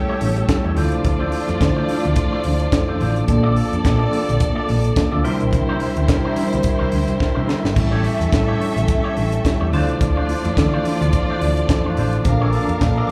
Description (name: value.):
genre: disco.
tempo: 107 BPM.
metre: 4/4.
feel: swing 56% on 16ths.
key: D minor.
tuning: A4 = 440 Hz.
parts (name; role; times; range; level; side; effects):
dark studio string section; second line; 0.0-13.1 s; G3 to F5; -27 LUFS; equal; none.
mellow tine electric piano; accompaniment; 0.0-13.1 s; E3 to C5; -26 LUFS; equal; none.
percussive tonewheel organ; sustained chords; 0.0-13.1 s; Bb3 to E6; -32 LUFS; equal; fast rotary speaker.
electric guitar with an envelope filter; accompaniment; 0.1-13.1 s; D4 to D5; -32 LUFS; equal; slapback echo.
hollow-body short-scale picked electric bass; bass; 0.2-13.0 s; G1 to D3; -23 LUFS; equal; none.
tight funk drum kit; drums; 0.2-13.0 s; crash cymbal, hi-hat, kick drum, snare drum; -24 LUFS; equal; none.
congas; percussion; 0.2-13.1 s; none; -32 LUFS; equal; none.
room: light reverb, small room ambience.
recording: live gig heard through the venue's PA, club reverb.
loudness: -19 LUFS.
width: mono.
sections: 0.0-13.1 A section.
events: drum fill 7.2-7.8.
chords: 0.0 A7; 0.8 Dm7; 3.3 Bbmaj7; 5.2 C7; 7.8 A7; 9.7 Dm7; 12.2 Bbmaj7.